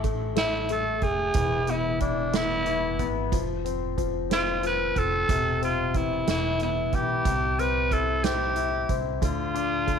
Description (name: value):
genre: six-eight pop ballad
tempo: 61 BPM (dotted quarters)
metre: 6/8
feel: straight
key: unclear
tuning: A4 = 435 Hz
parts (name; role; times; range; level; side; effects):
- clear concert grand piano; accompaniment; 0.0-10.0 s; C3 to E4; -29 LUFS; left 12 dB; none
- upright bass; bass; 0.0-10.0 s; E1 to D2; -32 LUFS; right 2 dB; none
- soft-mallet drum kit; drums; 0.0-10.0 s; hi-hat, kick drum, snare drum; -31 LUFS; right 4 dB; none
- growling tenor saxophone; melody; 0.4-10.0 s; D4 to B4; -26 LUFS; right 2 dB; none
room: moderate spring reverb, RT60 1.7 s, small room ambience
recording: 1960s-style stereo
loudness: -23 LUFS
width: side -7 dB against mid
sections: 0.0-10.0 A section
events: none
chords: 0.0 Fmaj7; 1.4 E; 3.3 F5; 5.3 Fmaj7/E; 6.3 E5; 7.3 C; 9.2 Dm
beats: 0.37 | 1.36 2.34 | 3.32 4.31 | 5.29 6.27 | 7.25 8.24 | 9.22